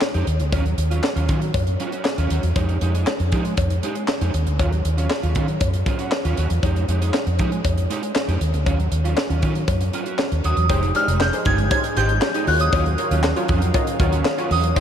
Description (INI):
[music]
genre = early-eighties boogie funk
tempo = 118 BPM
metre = 4/4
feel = straight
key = unclear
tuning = A4 = 441 Hz
[part]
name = electric guitar at the edge of break-up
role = riff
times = 0.0-14.8 s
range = Gb3 to Ab4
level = -28 LUFS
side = right 4 dB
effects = ensemble chorus
[part]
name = tight funk drum kit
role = drums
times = 0.0-14.8 s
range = handclaps, hi-hat, kick drum, snare drum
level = -24 LUFS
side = equal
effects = none
[part]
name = cowbell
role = percussion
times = 0.0-14.8 s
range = none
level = -29 LUFS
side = left 6 dB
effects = none
[part]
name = vintage muted fingered electric bass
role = bass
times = 0.1-14.8 s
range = F1 to F3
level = -20 LUFS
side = equal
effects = none
[part]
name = soft synth bell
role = melody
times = 10.5-14.8 s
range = Eb6 to Ab6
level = -23 LUFS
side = equal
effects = chorus, phaser, analog delay
[part]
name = funky polysynth comp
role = accompaniment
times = 10.7-14.8 s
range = Eb4 to Eb5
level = -27 LUFS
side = left 1 dB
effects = chorus
[part]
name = warm analog pad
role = sustained chords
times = 10.7-14.8 s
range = Eb3 to F5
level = -31 LUFS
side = right 1 dB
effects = chorus
[sound]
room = moderate huge ambient reverb, RT60 8.3 s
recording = dreamy mix soaked in reverb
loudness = -18 LUFS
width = side -9 dB against mid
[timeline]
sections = 0.0-10.7 A section; 10.7-14.8 B section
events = none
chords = 0.3 Ebm9; 2.6 Fm9; 4.3 Ebm9; 6.6 Fm9; 8.4 Ebm9; 10.7 Fm9; 12.5 Ebm9